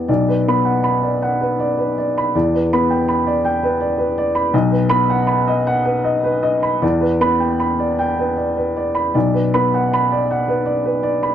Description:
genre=neoclassical minimalist piano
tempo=53 BPM (dotted quarters)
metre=6/8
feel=rubato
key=unclear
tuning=A4 = 440 Hz
part: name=warm upright piano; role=solo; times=0.0-11.3 s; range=B1 to B5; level=-15 LUFS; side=equal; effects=none
room=small room ambience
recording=dry, close 1970s-style studio recording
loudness=-15 LUFS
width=side -10 dB against mid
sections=0.1-11.3 A section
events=none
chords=0.1 Bm; 2.3 Em7; 4.5 B; 6.8 Em7; 9.1 Bm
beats=| 0.08 1.22 | 2.34 3.44 | 4.53 5.66 | 6.82 7.99 | 9.15 10.29

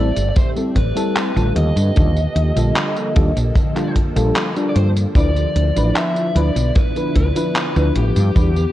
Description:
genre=vaporwave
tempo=75 BPM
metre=4/4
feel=straight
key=D dorian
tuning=A4 = 440 Hz
part: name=biting lead guitar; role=melody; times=0.0-8.7 s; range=G4 to E5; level=-24 LUFS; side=equal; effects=overdrive, tape echo
part: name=mellow FM electric piano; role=accompaniment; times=0.0-8.5 s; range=D3 to B4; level=-23 LUFS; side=left 1 dB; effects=analog chorus, analog delay
part: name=soft string machine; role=sustained chords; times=0.0-8.7 s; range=D3 to A4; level=-27 LUFS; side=equal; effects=ensemble chorus
part: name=woody fretless electric bass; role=bass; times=0.0-8.6 s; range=G1 to G2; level=-17 LUFS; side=equal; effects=none
part: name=detuned 8-bit digital drum machine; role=drums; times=0.2-8.7 s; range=handclaps, hi-hat, tambourine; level=-25 LUFS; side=equal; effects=studio reverb, gated reverb
part: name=kick drum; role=drums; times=0.4-8.5 s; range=none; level=-17 LUFS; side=equal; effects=studio reverb
room=light reverb, digital ambience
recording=cassette tape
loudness=-15 LUFS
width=side -14 dB against mid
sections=0.0-8.7 A section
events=none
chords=0.0 Am7; 1.6 Ebmaj9#11; 5.2 Dm69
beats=0.36 1.16 | 1.96 2.76 3.56 4.36 | 5.16 5.96 6.76 7.56 | 8.36

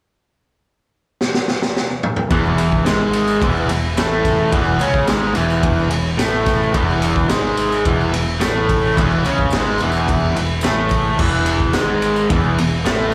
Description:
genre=garage rock duo or trio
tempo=108 BPM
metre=4/4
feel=straight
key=E major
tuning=A4 = 440 Hz
part: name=raw garage drum kit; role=drums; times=1.2-13.0 s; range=crash cymbal, kick drum, ride cymbal, snare drum, toms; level=-22 LUFS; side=equal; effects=none
part: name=overdriven combo organ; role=sustained chords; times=2.3-13.1 s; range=G#4 to F#5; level=-33 LUFS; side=equal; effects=none
part: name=raw garage guitar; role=riff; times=2.3-13.1 s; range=E2 to C#4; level=-20 LUFS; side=equal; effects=overdrive, slapback echo
part: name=fuzz picked electric bass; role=bass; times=2.3-13.1 s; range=E1 to C#2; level=-25 LUFS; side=equal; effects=overdrive
part: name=tambourine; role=percussion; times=2.3-13.1 s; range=none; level=-41 LUFS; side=equal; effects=none
room=light reverb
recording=live gig heard through the venue's PA, club reverb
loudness=-17 LUFS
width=mono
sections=0.1-2.3 A section; 2.3-13.1 B section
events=drum fill 1.2-2.3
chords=0.1 N.C.; 2.3 E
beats=| 0.08 0.63 1.19 1.74 | 2.30 2.85 3.41 3.96 | 4.52 5.07 5.63 6.18 | 6.74 7.30 7.85 8.41 | 8.96 9.52 10.08 10.63 | 11.19 11.74 12.30 12.85

